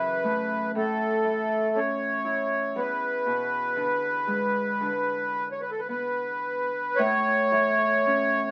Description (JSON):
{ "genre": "celtic folk, Celtic slow air", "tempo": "54-60 BPM", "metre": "4/4", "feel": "rubato", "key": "unclear", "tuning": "A4 = 438 Hz", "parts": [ { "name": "accordion", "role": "melody", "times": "0.0-8.5 s", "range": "A4 to C#5", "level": "-27 LUFS", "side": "equal", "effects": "light tremolo tuning" }, { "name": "Celtic harp", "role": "accompaniment", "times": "0.0-8.5 s", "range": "E2 to E4", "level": "-32 LUFS", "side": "equal", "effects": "none" } ], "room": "moderate studio reverb, RT60 0.8 s", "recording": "very old 78 rpm record, vinyl crackle", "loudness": "-26 LUFS", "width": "mono", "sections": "0.0-7.0 A section; 7.0-8.5 B section", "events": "none", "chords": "0.0 F#m7; 0.7 A; 2.8 E7; 7.0 A", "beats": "0.74 1.75 | 2.76 3.77 4.81 5.90 | 6.99 8.05" }